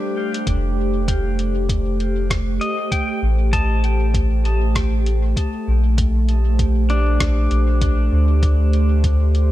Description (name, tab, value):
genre	ambient dub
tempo	98 BPM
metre	4/4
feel	swing 59% on 16ths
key	F major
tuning	A4 = 440 Hz
part	airy breathy pad	sustained chords	0.0-9.5 s	A3 to C5	-24 LUFS	right 1 dB	chorus
part	pedal steel guitar	arpeggios	0.0-9.0 s	D4 to A5	-28 LUFS	left 2 dB	vintage 12-bit sampler grit, dub echo
part	drifting glass-harmonics texture	texture	0.0-0.5 s	G3 to G4	-35 LUFS	right 4 dB	chorus, built-in reverb
part	lo-fi sampler-style drum kit	drums	0.3-9.5 s	hi-hat, rim click	-28 LUFS	left 1 dB	dub echo
part	soft dub sub bass	bass	0.5-9.5 s	F1 to D2	-17 LUFS	equal	none
part	electronic kick drum	drums	0.5-9.2 s	none	-22 LUFS	equal	none
room	little or no reverb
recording	none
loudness	-16 LUFS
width	side -15 dB against mid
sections	0.5-9.5 A section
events	break 0.0-0.5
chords	0.5 F; 5.4 Bb